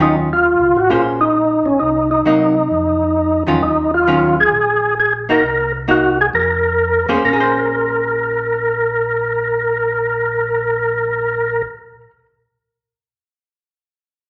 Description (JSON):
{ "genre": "jazz", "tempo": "133 BPM", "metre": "4/4", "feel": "swing 68% on 8ths", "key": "Bb minor", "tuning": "A4 = 440 Hz", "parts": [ { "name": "percussive tonewheel organ", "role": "melody", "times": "0.0-11.6 s", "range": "Db4 to Bb4", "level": "-17 LUFS", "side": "equal", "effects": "slow rotary speaker, overdrive, chorus vibrato" }, { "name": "archtop guitar, miked and amplified", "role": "accompaniment", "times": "0.0-12.3 s", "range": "Eb3 to C5", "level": "-20 LUFS", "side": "equal", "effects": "none" }, { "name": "mellow tonewheel organ", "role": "bass", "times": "0.0-11.6 s", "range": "A1 to C3", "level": "-30 LUFS", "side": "equal", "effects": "slow rotary speaker" } ], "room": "wet large studio reverb, RT60 1.1 s", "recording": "none", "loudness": "-16 LUFS", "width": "mono", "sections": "0.0-7.2 A section; 7.2-10.9 B section", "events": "none", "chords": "0.0 Ebm9; 0.9 Bbm9; 1.8 Cm7b5; 2.7 Ebm9; 4.5 Ebmadd11/Bb; 5.4 Cm7b5; 6.3 Fsus4; 7.2 Bbm9" }